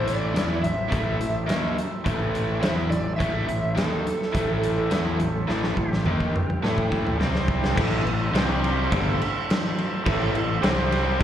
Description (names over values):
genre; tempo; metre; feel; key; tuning
blues rock power trio and southern rock; 105 BPM; 4/4; straight; A minor; A4 = 443 Hz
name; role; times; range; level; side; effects
overdriven slide guitar; melody; 0.0-7.2 s; A4 to E5; -31 LUFS; right 1 dB; slapback echo, tape echo
overdriven tonewheel organ; sustained chords; 0.0-11.2 s; E3 to C5; -34 LUFS; right 2 dB; slow rotary speaker
overdriven electric guitar; riff; 0.0-11.2 s; G2 to A4; -27 LUFS; equal; slapback echo
fuzz fingered electric bass; bass; 0.0-11.2 s; G1 to A2; -27 LUFS; equal; overdrive
big rock drum kit; drums; 0.1-11.2 s; crash cymbal, hi-hat, kick drum, snare drum, toms; -26 LUFS; equal; none
room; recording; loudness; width
light reverb, studio ambience; live gig heard through the venue's PA, club reverb; -21 LUFS; side -10 dB against mid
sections
0.0-7.8 A section; 7.8-11.2 B section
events
drum fill 5.5-7.8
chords
0.0 Am; 7.2 C5; 7.8 Am; 8.3 C5; 8.9 Am; 10.6 C5